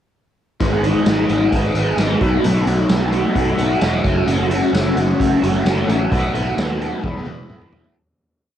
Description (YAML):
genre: indie rock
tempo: 131 BPM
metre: 4/4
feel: straight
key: unclear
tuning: A4 = 442 Hz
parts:
  - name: tonewheel organ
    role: sustained chords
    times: 0.6-8.0 s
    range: G#4 to B5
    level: -30 LUFS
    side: right 1 dB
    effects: slow rotary speaker, cassette tape
  - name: crunchy overdriven guitar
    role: riff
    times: 0.6-8.0 s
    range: E2 to G#4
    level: -18 LUFS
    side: equal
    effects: phaser, cassette tape
  - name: picked electric bass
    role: bass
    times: 0.6-7.9 s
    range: E1 to D#2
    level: -22 LUFS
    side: equal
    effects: none
  - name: raw garage drum kit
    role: drums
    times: 0.6-8.0 s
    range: hi-hat, kick drum, snare drum, tambourine, toms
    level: -22 LUFS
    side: equal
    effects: cassette tape
room: small room ambience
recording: home recording on cassette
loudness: -15 LUFS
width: side -10 dB against mid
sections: 0.6-8.0 pre-chorus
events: fade-out 6.1-8.0; drum fill 7.0-8.0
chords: 0.6 G#m7; 2.2 B7sus4; 4.0 F#m7; 6.1 B7sus4; 7.0 Emaj7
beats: | 0.60 1.06 1.52 1.99 | 2.44 2.90 3.36 3.82 | 4.28 4.74 5.20 5.66 | 6.12 6.58 7.04 7.50